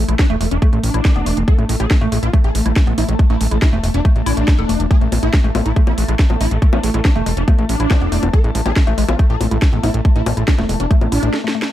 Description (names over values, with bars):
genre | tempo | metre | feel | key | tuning
psychedelic trance | 140 BPM | 4/4 | straight | unclear | A4 = 445 Hz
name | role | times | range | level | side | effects
swarming rave lead | melody | 0.0-11.3 s | A3 to A4 | -23 LUFS | equal | chorus, phaser, sidechain pumping, digital delay
pulsing gated texture | sustained chords | 0.0-11.3 s | A3 | -28 LUFS | right 1 dB | none
fat analog bass | bass | 0.0-11.3 s | E1 to A1 | -18 LUFS | equal | none
airy breathy pad | texture | 0.0-11.3 s | E4 to A5 | -32 LUFS | left 4 dB | chorus, phaser, sidechain pumping
woody wave-folded pluck | riff | 0.1-11.6 s | G#3 to A4 | -26 LUFS | moving between left 10 dB and right 8 dB | chorus, auto-pan, sidechain pumping, digital delay
garage drum kit | drums | 0.1-11.7 s | bongos, hi-hat, snare drum | -23 LUFS | left 1 dB | overdrive
electronic kick drum | drums | 0.2-11.0 s | none | -13 LUFS | equal | overdrive
room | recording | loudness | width
little or no reverb | none | -13 LUFS | side -13 dB against mid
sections
0.0-11.7 A section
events
fade-in on analog synth pad 0.0-11.7; break 11.3-11.7; drum fill 11.3-11.7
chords
0.0 A5